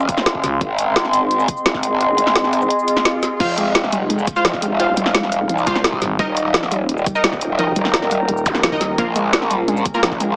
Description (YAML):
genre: dark technical drum and bass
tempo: 172 BPM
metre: 4/4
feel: straight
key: F minor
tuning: A4 = 437 Hz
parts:
  - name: growl bass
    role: bass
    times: 0.0-10.4 s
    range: Eb1 to C2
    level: -20 LUFS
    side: equal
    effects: chorus, tube saturation
  - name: drum and bass drum kit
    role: drums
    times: 0.0-10.3 s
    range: crash cymbal, hi-hat, shaker, snare drum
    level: -18 LUFS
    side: equal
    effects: none
  - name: warbly tape-like pad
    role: texture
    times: 0.0-10.4 s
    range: C4 to C6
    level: -21 LUFS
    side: equal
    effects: chorus, built-in reverb, sidechain pumping
  - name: electronic kick drum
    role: drums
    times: 0.1-10.2 s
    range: none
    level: -25 LUFS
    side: equal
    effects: none
  - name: growling FM bass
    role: bass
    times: 0.4-0.6, 6.0-6.2, 8.3-9.0 s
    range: Eb1 to Db2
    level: -23 LUFS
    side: equal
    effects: none
  - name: swell and zap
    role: sound effects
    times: 2.8-3.4, 8.5 s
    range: none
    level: -24 LUFS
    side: equal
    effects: none
  - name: warbly dusty pluck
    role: arpeggios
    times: 3.4-10.2 s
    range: F3 to Ab3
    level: -25 LUFS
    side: equal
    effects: chorus, sidechain pumping, digital delay
  - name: orchestra-hit-like synth stab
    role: stabs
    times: 3.4-10.0 s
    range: Bb3 to F5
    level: -22 LUFS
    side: equal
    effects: built-in reverb, digital delay
room: moderate plate reverb, RT60 1.2 s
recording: heavily compressed radio sound, multiband compression, small speaker sound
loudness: -15 LUFS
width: side -30 dB against mid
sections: 0.0-10.4 A section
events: swell 2.8-3.4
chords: 0.0 Bbmadd9; 0.6 Ab; 3.4 Fm7; 6.2 Eb; 9.0 Bbmadd9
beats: 0.26 | 0.61 0.96 1.31 1.66 | 2.01 2.35 2.70 3.05 | 3.40 3.75 4.10 4.45 | 4.80 5.15 5.49 5.84 | 6.19 6.54 6.89 7.24 | 7.59 7.94 8.29 8.63 | 8.98 9.33 9.68 10.03